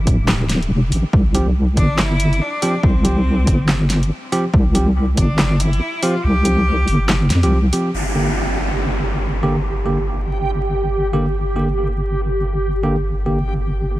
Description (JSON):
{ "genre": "deep dubstep", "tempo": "141 BPM", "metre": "4/4", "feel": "swing 61% on 16ths, half-time", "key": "G dorian", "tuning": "A4 = 440 Hz", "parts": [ { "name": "deep soft wobble bass", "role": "bass", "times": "0.0-14.0 s", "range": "D1 to F2", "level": "-18 LUFS", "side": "equal", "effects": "chorus, tube saturation" }, { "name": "deep house drum kit", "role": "drums", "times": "0.1-7.8 s", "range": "handclaps, hi-hat, snare drum", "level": "-22 LUFS", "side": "equal", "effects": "overdrive, small room reverb" }, { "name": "electronic kick drum", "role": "drums", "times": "0.1-5.3 s", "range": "none", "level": "-17 LUFS", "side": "equal", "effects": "overdrive, small room reverb" }, { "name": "bell-like tine electric piano", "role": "stabs", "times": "1.3-13.4 s", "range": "D3 to G4", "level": "-23 LUFS", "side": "right 1 dB", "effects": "dub echo" }, { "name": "bright cello", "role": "melody", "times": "1.8-7.5 s", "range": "C4 to G4", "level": "-26 LUFS", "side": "left 1 dB", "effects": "dub echo" }, { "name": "downlifter", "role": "sound effects", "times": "7.9-11.3 s", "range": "none", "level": "-26 LUFS", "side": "equal", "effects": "none" }, { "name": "backwards swelling texture", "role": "texture", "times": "8.5-14.0 s", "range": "G4", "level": "-25 LUFS", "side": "right 2 dB", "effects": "built-in reverb" } ], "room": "little or no reverb", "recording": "vinyl crackle", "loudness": "-15 LUFS", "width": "side -16 dB against mid", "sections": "0.0-7.9 A section; 7.9-14.0 B section", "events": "drop 0.0-7.9; kick drops out 6.2-7.9", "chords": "0.0 N.C.; 1.1 Csus4; 7.9 Gm" }